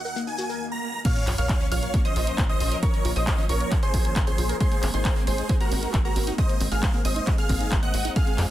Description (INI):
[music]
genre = uplifting trance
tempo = 135 BPM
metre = 4/4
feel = straight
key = Bb minor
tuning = A4 = 444 Hz
[part]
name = big supersaw lead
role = melody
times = 0.0-8.4 s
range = Gb4 to Bb5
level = -30 LUFS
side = equal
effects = phaser, sidechain pumping
[part]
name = analog string pad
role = sustained chords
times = 0.0-8.5 s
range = Eb2 to Gb4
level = -35 LUFS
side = equal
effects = ensemble chorus, sidechain pumping
[part]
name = shekere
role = percussion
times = 0.0-0.6 s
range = none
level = -40 LUFS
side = left 4 dB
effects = none
[part]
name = wide unison pluck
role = arpeggios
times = 0.1-8.4 s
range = Ab3 to Bb4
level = -36 LUFS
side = right 1 dB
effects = sidechain pumping, dub echo
[part]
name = swell and sub drop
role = sound effects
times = 0.4-2.8 s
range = none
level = -34 LUFS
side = equal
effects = none
[part]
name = wide unison pluck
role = second line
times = 1.0-8.4 s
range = Bb5 to Gb6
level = -36 LUFS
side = right 1 dB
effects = sidechain pumping
[part]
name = electronic kick drum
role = drums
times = 1.1-8.2 s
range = none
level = -24 LUFS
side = equal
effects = none
[part]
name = punchy analog drum machine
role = drums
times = 1.1-8.5 s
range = crash cymbal, handclaps, hi-hat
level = -32 LUFS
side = equal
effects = low-pass filter on hats, low-pass filter on cymbals, low-pass filter on snare
[part]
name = tight sequencer bass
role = bass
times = 1.3-8.5 s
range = Ab1 to F2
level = -27 LUFS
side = equal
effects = sidechain pumping
[sound]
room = little or no reverb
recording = dense, heavily limited modern master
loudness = -21 LUFS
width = side -14 dB against mid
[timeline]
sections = 0.0-1.1 A section; 1.1-8.5 B section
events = swell 0.4-1.1; drop 1.1-8.5; impact 1.1-2.8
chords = 0.0 Ebm; 1.1 Bbm; 4.6 Abadd9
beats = 0.16 0.60 | 1.05 1.49 1.94 2.38 | 2.83 3.27 3.72 4.16 | 4.61 5.05 5.49 5.94 | 6.38 6.83 7.27 7.72 | 8.16